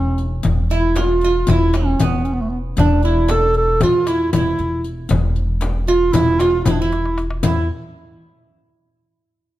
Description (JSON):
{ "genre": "Turkish makam ensemble", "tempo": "232 BPM (eighths)", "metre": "9/8", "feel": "straight", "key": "E makam hicaz", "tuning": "A4 = 441 Hz", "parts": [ { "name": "dark clarinet", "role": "melody", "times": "0.0-7.7 s", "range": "A3 to A4", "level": "-18 LUFS", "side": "right 1 dB", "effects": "none" }, { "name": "qanun", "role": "second line", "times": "0.0-7.7 s", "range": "B3 to A4", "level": "-23 LUFS", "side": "right 3 dB", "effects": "none" }, { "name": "upright bass", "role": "bass", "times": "0.0-7.7 s", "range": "E1 to E2", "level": "-19 LUFS", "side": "equal", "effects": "none" }, { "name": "riq", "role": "percussion", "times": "0.2-7.7 s", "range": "none", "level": "-31 LUFS", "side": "left 6 dB", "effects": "none" }, { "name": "darbuka", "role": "percussion", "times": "0.4-7.7 s", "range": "none", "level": "-25 LUFS", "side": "left 3 dB", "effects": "none" }, { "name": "frame drum", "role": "percussion", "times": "0.4-7.7 s", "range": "none", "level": "-24 LUFS", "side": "left 4 dB", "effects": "none" } ], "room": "little or no reverb", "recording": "close, detailed microphones", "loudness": "-15 LUFS", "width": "side -14 dB against mid", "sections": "0.0-7.4 A section; 7.4-9.6 B section", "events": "drum fill 6.9-7.4", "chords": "none", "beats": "0.19 | 0.45 0.70 0.96 1.22 1.48 1.74 2.00 2.26 2.52 | 2.78 3.04 3.29 3.55 3.81 4.07 4.33 4.59 4.85 | 5.11 5.37 5.62 5.88 6.14 6.40 6.66 6.92 7.18 | 7.43" }